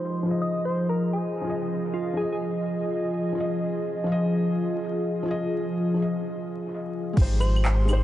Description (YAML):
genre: future garage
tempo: 126 BPM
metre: 4/4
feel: swing 65% on 16ths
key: F minor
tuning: A4 = 440 Hz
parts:
  - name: soft struck synth lead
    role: melody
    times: 0.0-2.4, 7.4-8.0 s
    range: F4 to Eb5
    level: -33 LUFS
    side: right 1 dB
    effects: chorus, dub echo
  - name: felt-muted upright piano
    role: accompaniment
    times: 0.0-8.0 s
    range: F3 to Eb5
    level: -29 LUFS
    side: left 3 dB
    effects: sidechain pumping, dub echo
  - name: warbly tape-like pad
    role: sustained chords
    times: 0.0-8.0 s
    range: F3 to Eb5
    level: -28 LUFS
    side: right 1 dB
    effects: chorus, built-in reverb, sidechain pumping
  - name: soft dub sub bass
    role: bass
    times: 7.2-8.0 s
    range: Ab1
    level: -21 LUFS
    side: equal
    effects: tube saturation, sidechain pumping
  - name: electronic kick drum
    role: drums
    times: 7.2-7.3 s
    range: none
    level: -21 LUFS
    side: equal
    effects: overdrive
  - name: organic electronic drum kit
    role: drums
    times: 7.2-8.0 s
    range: cabasa, claves, crash cymbal, handclaps, shaker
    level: -32 LUFS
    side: right 1 dB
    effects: overdrive
room: light reverb, digital ambience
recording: vinyl crackle, low-pass filter, nothing above 11.0 kHz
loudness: -24 LUFS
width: side -13 dB against mid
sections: 0.0-7.2 A section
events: filter sweep 0.0-7.2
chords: 0.0 Fm7; 7.2 Abmaj7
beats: 0.03 0.50 0.98 | 1.46 1.93 2.41 2.88 | 3.36 3.84 4.31 4.79 | 5.27 5.74 6.22 6.69 | 7.17 7.65